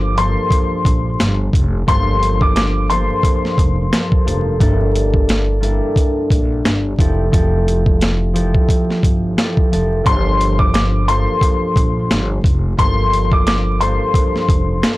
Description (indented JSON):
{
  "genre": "hip hop, boom-bap hip-hop",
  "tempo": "88 BPM",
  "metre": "4/4",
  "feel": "swing 58% on 16ths",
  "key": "G dorian",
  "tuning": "A4 = 440 Hz",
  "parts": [
    { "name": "dark upright piano", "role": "melody", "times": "0.0-4.6, 10.1-15.0 s", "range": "C6 to D6", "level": "-20 LUFS", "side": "left 2 dB", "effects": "high-pass filter, low-pass filter, ping-pong delay" },
    { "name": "concert harp", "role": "accompaniment", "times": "0.0-15.0 s", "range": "G2 to C5", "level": "-20 LUFS", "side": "equal", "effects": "cassette tape, high-pass filter, low-pass filter" },
    { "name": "upright bass", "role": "bass", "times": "0.0-14.8 s", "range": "F1 to Bb1", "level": "-18 LUFS", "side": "equal", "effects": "tube saturation" },
    { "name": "boom bap sampler-style drum kit", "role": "drums", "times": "0.2-15.0 s", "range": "hi-hat, kick drum, snare drum", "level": "-16 LUFS", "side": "equal", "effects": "none" }
  ],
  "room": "light reverb",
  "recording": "blown-out, overdriven recording, vinyl crackle, overdrive",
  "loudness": "-13 LUFS",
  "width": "side -18 dB against mid",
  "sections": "0.0-15.0 A section",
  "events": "none",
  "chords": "0.0 Gm11; 4.6 Gm69; 7.0 Fmaj9; 10.1 Gm11"
}